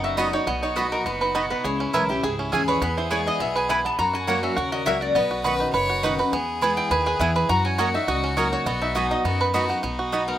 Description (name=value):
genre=bluegrass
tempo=205 BPM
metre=4/4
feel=straight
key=B major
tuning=A4 = 440 Hz
part: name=lap resonator guitar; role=melody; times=0.0-10.4 s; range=D#4 to B5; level=-26 LUFS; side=left 1 dB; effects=slapback echo
part: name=clear fiddle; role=second line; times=0.0-10.4 s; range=D#4 to C#5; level=-30 LUFS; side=left 4 dB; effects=slapback echo
part: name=picked steel-string acoustic guitar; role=accompaniment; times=0.0-10.4 s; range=E2 to F#4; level=-29 LUFS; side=left 2 dB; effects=none
part: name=bluegrass banjo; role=arpeggios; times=0.0-10.4 s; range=F#3 to B4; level=-25 LUFS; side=right 3 dB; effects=slapback echo
part: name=upright bass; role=bass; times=0.0-10.3 s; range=F#1 to F#2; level=-30 LUFS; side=left 1 dB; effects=none
part: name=mandolin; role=stabs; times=0.2-10.2 s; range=A#3 to C#6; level=-26 LUFS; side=right 4 dB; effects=none
room=little or no reverb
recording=recorded outdoors, with no room sound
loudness=-20 LUFS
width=side -11 dB against mid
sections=0.5-9.8 A section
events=resonator guitar played with a steel bar solo 0.0-9.8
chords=0.5 B; 1.6 C#m; 2.8 E; 4.0 F#; 5.2 Badd9; 6.3 E; 7.5 F#6; 8.7 B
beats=0.18 | 0.47 0.76 1.06 1.35 | 1.64 1.94 2.23 2.52 | 2.82 3.11 3.40 3.69 | 3.99 4.28 4.57 4.87 | 5.16 5.45 5.74 6.03 | 6.33 6.62 6.91 7.20 | 7.50 7.79 8.08 8.37 | 8.66 8.96 9.25 9.54 | 9.83 10.12